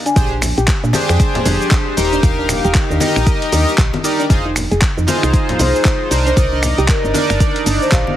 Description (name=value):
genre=deep house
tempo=116 BPM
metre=4/4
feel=swing 60% on 16ths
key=unclear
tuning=A4 = 439 Hz
part: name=marimba with soft mallets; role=melody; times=0.1-0.4, 5.6-8.2 s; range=Bb4 to Ab5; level=-22 LUFS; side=equal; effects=tape echo
part: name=soft round pluck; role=arpeggios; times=0.1-8.0 s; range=D4 to C5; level=-25 LUFS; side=right 2 dB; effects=chorus, vintage 12-bit sampler grit, sidechain pumping, tape echo
part: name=dusty soul sampler-style drum kit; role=drums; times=0.1-8.0 s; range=finger snaps, handclaps, hi-hat, shaker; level=-21 LUFS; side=equal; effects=none
part: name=chorused polysynth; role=stabs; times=0.2-8.2 s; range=D4 to F5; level=-18 LUFS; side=equal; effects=sidechain pumping, tape echo
part: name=woody FM bass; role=bass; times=0.2-8.0 s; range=Eb1 to Bb2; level=-18 LUFS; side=equal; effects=tube saturation, sidechain pumping
part: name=electronic kick drum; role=drums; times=0.2-8.0 s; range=none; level=-15 LUFS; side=equal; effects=none
part: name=congas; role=percussion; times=0.4-8.2 s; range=none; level=-22 LUFS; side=left 3 dB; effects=none
room=little or no reverb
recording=heavily compressed radio sound, multiband compression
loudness=-12 LUFS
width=side -12 dB against mid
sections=0.0-8.2 A section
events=none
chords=0.0 Bb13; 2.0 Ebmaj7; 4.3 Fm7; 6.1 Cm9